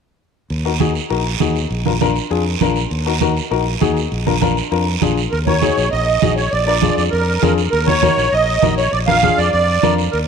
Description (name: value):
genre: latin, cumbia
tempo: 199 BPM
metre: 4/4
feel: straight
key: Eb harmonic minor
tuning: A4 = 441 Hz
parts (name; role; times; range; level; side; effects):
- fingered electric bass; bass; 0.5-10.3 s; Bb1 to F2; -20 LUFS; equal; none
- guiro; percussion; 0.5-10.3 s; none; -26 LUFS; right 12 dB; none
- warm upright piano; accompaniment; 0.6-10.0 s; D4 to Bb4; -20 LUFS; left 10 dB; none
- congas; percussion; 0.8-10.0 s; none; -20 LUFS; right 9 dB; none
- musette accordion; melody; 5.3-10.2 s; Bb4 to F5; -16 LUFS; right 2 dB; none
room: moderate plate reverb, RT60 3.0 s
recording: 1960s-style stereo with parts hard left and right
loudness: -14 LUFS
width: side -6 dB against mid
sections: 0.5-5.3 A section; 5.3-10.3 B section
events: none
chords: 0.5 Ebm; 1.7 Bb; 2.9 Ebm; 4.1 Bb7; 5.3 Ebm; 6.5 Bb7; 7.7 Ebm; 8.9 Bb7